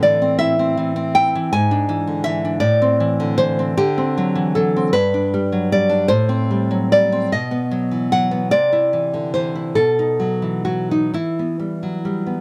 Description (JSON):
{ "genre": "romantic piece for solo classical guitar", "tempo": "43-55 BPM (dotted quarters)", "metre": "6/8", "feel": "rubato", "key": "E minor", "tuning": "A4 = 441 Hz", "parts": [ { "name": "nylon-string guitar", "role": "solo", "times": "0.0-12.4 s", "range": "G2 to G#5", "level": "-18 LUFS", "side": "equal", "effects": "none" } ], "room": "little or no reverb", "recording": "close, detailed microphones", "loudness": "-18 LUFS", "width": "mono", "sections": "0.0-12.4 A section", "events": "none", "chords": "0.0 Am; 1.5 E7/G#; 2.6 Am; 3.8 D7; 4.9 G; 6.1 Am7; 7.3 B; 8.5 C; 9.8 B7; 11.2 Em" }